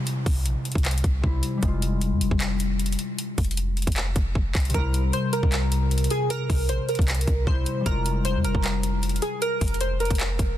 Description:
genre	hip hop, trap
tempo	154 BPM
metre	4/4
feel	half-time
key	F harmonic minor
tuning	A4 = 440 Hz
part	concert harp	accompaniment	0.0-10.6 s	C3 to F4	-29 LUFS	left 3 dB	none
part	downlifter	sound effects	0.0-1.6 s	none	-45 LUFS	equal	none
part	trap drum kit	drums	0.1-10.5 s	handclaps, hi-hat, kick drum	-26 LUFS	equal	none
part	clean 808-style bass	bass	0.3-10.6 s	F1 to F2	-25 LUFS	equal	none
part	glassy digital keys	melody	4.7-10.6 s	Ab4 to C5	-28 LUFS	right 2 dB	chorus, phaser
room	digital ambience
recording	dense, heavily limited modern master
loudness	-22 LUFS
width	side -12 dB against mid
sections	0.0-10.6 A section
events	break 0.0-4.7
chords	0.0 C; 1.6 Fmadd9; 4.7 C; 7.9 Fmadd9

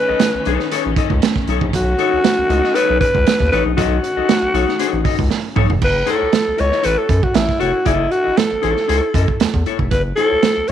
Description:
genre	funk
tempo	117 BPM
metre	4/4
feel	straight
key	F# dorian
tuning	A4 = 440 Hz
part	breathy alto saxophone	melody	0.0-10.7 s	E4 to C#5	-17 LUFS	equal	none
part	warm studio string section	sustained chords	0.0-5.8 s	D#3 to C#4	-29 LUFS	left 3 dB	none
part	mellow electric guitar	accompaniment	0.1-10.7 s	D#4 to D#5	-22 LUFS	left 15 dB	none
part	round analog bass	bass	0.1-10.7 s	E#1 to F#2	-20 LUFS	equal	none
part	crunchy breakbeat drum kit	drums	0.2-10.7 s	crash cymbal, hi-hat, kick drum, snare drum, toms	-18 LUFS	right 5 dB	none
room	light reverb, small room ambience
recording	1960s-style stereo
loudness	-14 LUFS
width	side -10 dB against mid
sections	0.0-5.8 A section; 5.8-10.7 B section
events	drum fill 5.3-5.8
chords	0.0 B9; 5.8 F#m7

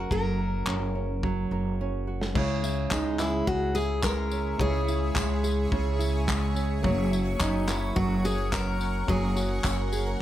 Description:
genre	acoustic pop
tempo	107 BPM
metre	4/4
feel	straight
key	unclear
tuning	A4 = 441 Hz
part	picked steel-string acoustic guitar	melody	0.0-10.2 s	D#4 to A#4	-32 LUFS	left 1 dB	none
part	nylon-string guitar	accompaniment	0.0-10.2 s	C#3 to A#4	-30 LUFS	right 4 dB	none
part	upright bass	bass	0.0-10.2 s	F#1 to C#2	-29 LUFS	equal	none
part	loose indie drum kit	drums	0.1-10.1 s	crash cymbal, handclaps, kick drum, snare drum, tambourine	-31 LUFS	left 1 dB	none
part	barky reed electric piano	accompaniment	2.3-10.2 s	G#3 to C#5	-35 LUFS	left 5 dB	none
part	shimmering ambient pad	sustained chords	3.7-10.2 s	G#4 to C#6	-38 LUFS	left 2 dB	chorus, built-in reverb, phaser
part	tambourine	percussion	2.9-9.8 s	none	-41 LUFS	left 8 dB	none
room	light reverb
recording	none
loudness	-25 LUFS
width	side -12 dB against mid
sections	0.0-2.4 A section; 2.4-10.2 B section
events	drum fill 1.8-2.4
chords	0.0 F#; 2.4 C#m; 6.8 F#

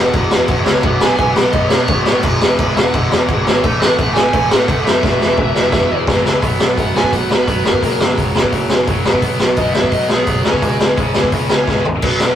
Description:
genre	punk rock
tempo	172 BPM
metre	4/4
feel	straight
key	E major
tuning	A4 = 440 Hz
part	smooth overdriven lead guitar	melody	0.0-10.8 s	F#4 to G#5	-21 LUFS	right 2 dB	none
part	tight distorted guitar	riff	0.0-12.4 s	E2 to C#4	-19 LUFS	right 1 dB	distortion
part	fuzz picked electric bass	bass	0.0-12.4 s	E1 to B2	-23 LUFS	equal	overdrive
part	raw garage drum kit	drums	0.1-12.3 s	crash cymbal, hi-hat, kick drum, snare drum, toms	-14 LUFS	equal	none
room	light reverb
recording	rough rehearsal-room recording, tube saturation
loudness	-12 LUFS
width	side -10 dB against mid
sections	0.0-6.4 A section; 6.4-12.4 B section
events	drum fill 5.0-6.4, 11.7-12.0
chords	0.0 E; 0.8 B5; 2.2 E; 3.6 A5; 5.0 E5; 6.4 B5; 7.8 F#5; 9.1 B5; 10.5 C#5

